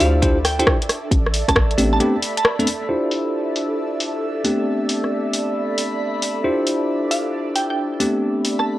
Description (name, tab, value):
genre	UK garage, two-step garage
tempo	135 BPM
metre	4/4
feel	swing 67% on 16ths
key	D dorian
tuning	A4 = 440 Hz
part	glassy wavetable pluck	melody	0.0-2.9, 7.1-8.8 s	F5 to A5	-25 LUFS	right 2 dB	chorus, tape echo
part	ethereal airy pad	sustained chords	0.0-8.8 s	D5	-31 LUFS	right 5 dB	ensemble chorus, built-in reverb, phaser, sidechain pumping
part	bell-like tine electric piano	stabs	0.0-8.8 s	A3 to C5	-21 LUFS	equal	low-pass filter
part	hollow knocking FM bass	bass	0.0-2.0 s	A1 to D2	-20 LUFS	equal	sidechain pumping
part	house drum kit	drums	0.0-8.7 s	hi-hat, rim click	-21 LUFS	equal	low-pass filter on hats, low-pass filter on snare
part	airy breathy pad	texture	0.0-8.8 s	D4 to B5	-28 LUFS	equal	chorus, phaser, sidechain pumping
part	electronic kick drum	drums	0.2-1.7 s	none	-20 LUFS	equal	none
room	light reverb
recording	dry, gritty hardware recording, cassette tape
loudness	-18 LUFS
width	side -15 dB against mid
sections	0.0-2.9 A section; 2.9-8.8 B section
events	filter sweep on ambient pad 2.9-8.8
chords	0.0 Dm11; 0.9 Am11; 2.9 Dm11; 4.4 Am11; 6.4 Dm11; 8.0 Am11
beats	0.22 0.67 | 1.11 1.56 2.00 2.45 | 2.89 3.33 3.78 4.22 | 4.67 5.11 5.56 6.00 | 6.45 6.89 7.33 7.78 | 8.22 8.67